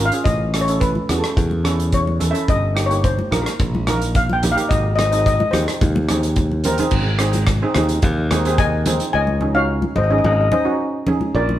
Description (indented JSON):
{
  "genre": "calypso",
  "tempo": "108 BPM",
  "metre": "4/4",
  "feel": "straight",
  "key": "unclear",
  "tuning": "A4 = 440 Hz",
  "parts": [
    { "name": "steel pan", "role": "melody", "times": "0.0-11.6 s", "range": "A4 to Ab5", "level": "-21 LUFS", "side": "left 3 dB", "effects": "none" },
    { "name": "steel pan", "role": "accompaniment", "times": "0.0-11.4 s", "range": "Bb3 to Bb4", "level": "-23 LUFS", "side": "right 3 dB", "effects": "none" },
    { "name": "modern bright fingered electric bass", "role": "bass", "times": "0.0-11.6 s", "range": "G1 to E2", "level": "-20 LUFS", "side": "equal", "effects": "none" },
    { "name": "loose indie drum kit", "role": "drums", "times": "0.1-9.1 s", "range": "crash cymbal, hi-hat, kick drum, rim click", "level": "-22 LUFS", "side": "equal", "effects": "none" },
    { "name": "congas", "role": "percussion", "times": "1.0-11.6 s", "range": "none", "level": "-26 LUFS", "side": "equal", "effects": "none" }
  ],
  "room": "moderate stone room reverb, RT60 1.2 s",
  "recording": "band playing live in one room",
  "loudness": "-16 LUFS",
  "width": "side -12 dB against mid",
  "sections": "0.0-6.9 A section; 6.9-9.1 B section; 9.1-11.6 C section",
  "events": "steel pan solo 0.0-6.9; drum fill 6.4-6.9",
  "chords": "0.3 A; 2.5 Eb/G; 4.7 Ab; 9.1 Dbsus2"
}